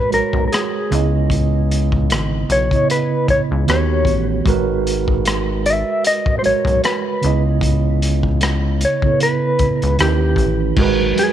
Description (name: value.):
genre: R&B, neo-soul.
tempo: 76 BPM.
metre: 4/4.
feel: swing 58% on 16ths.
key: G# minor.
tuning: A4 = 439 Hz.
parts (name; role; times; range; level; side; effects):
mellow electric guitar; melody; 0.0-11.3 s; G4 to E5; -19 LUFS; left 2 dB; tremolo.
mellow tine electric piano; accompaniment; 0.0-11.3 s; C#3 to D#5; -19 LUFS; right 7 dB; medium stereo tremolo.
rubbery square bass; bass; 0.1-11.1 s; G#1 to D#2; -19 LUFS; left 2 dB; none.
crunchy breakbeat drum kit; drums; 0.1-11.3 s; crash cymbal, hi-hat, kick drum, rim click; -21 LUFS; left 2 dB; none.
congas; percussion; 11.0-11.3 s; none; -26 LUFS; left 15 dB; none.
room: light reverb, small room ambience.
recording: 1960s-style stereo with parts hard left and right.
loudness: -14 LUFS.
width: side -10 dB against mid.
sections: 0.0-10.8 A section.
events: none.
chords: 0.0 G#m9; 0.9 C#m9; 3.7 D#7alt; 4.5 G#m9; 7.2 C#m9; 10.0 D#7b9b13; 10.8 G#m9.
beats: 0.51 | 1.30 2.09 2.88 3.67 | 4.45 5.24 6.03 6.82 | 7.61 8.40 9.19 9.98 | 10.77.